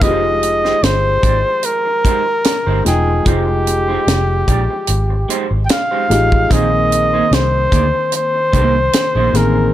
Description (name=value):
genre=lush 1970s-style soul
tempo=74 BPM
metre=4/4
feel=swing 54% on 16ths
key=F minor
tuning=A4 = 441 Hz
part: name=clear flugelhorn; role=melody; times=0.0-9.7 s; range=G4 to G5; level=-16 LUFS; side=equal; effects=none
part: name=clear baby grand piano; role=accompaniment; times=0.0-9.7 s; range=Eb3 to G5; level=-21 LUFS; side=left 2 dB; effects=none
part: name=electric guitar through a small old amp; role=riff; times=0.0-9.6 s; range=Ab3 to D5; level=-24 LUFS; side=right 6 dB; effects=none
part: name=vintage muted fingered electric bass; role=bass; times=0.0-9.7 s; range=E1 to D2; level=-17 LUFS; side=equal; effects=none
part: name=tight funk drum kit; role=drums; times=0.0-9.5 s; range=hi-hat, kick drum, snare drum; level=-17 LUFS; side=equal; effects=none
room=light reverb, small room ambience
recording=none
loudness=-12 LUFS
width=side -13 dB against mid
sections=0.0-9.7 A section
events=none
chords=0.0 Fm9; 6.5 Bb9sus4